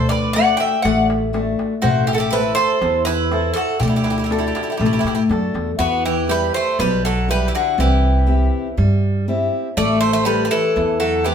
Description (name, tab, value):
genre	greek folk, Greek bouzouki band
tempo	121 BPM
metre	4/4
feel	straight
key	unclear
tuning	A4 = 440 Hz
part	Greek bouzouki	melody	0.0-11.3 s	F#4 to G5	-20 LUFS	left 1 dB	none
part	Greek bouzouki	second line	0.0-11.3 s	D3 to E5	-24 LUFS	right 4 dB	none
part	fingerpicked steel-string acoustic guitar	accompaniment	0.0-11.3 s	B2 to C5	-22 LUFS	left 3 dB	none
part	upright bass	bass	0.0-11.3 s	A1 to A2	-20 LUFS	right 1 dB	none
part	darbuka	percussion	0.1-5.7 s	none	-25 LUFS	left 2 dB	none
room	wet studio reverb, RT60 0.9 s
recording	band playing live in one room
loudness	-16 LUFS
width	side -8 dB against mid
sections	0.0-5.8 A section; 5.8-11.3 A section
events	none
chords	0.0 D; 1.8 Am; 3.8 D; 5.8 Em; 7.8 C; 9.8 Am7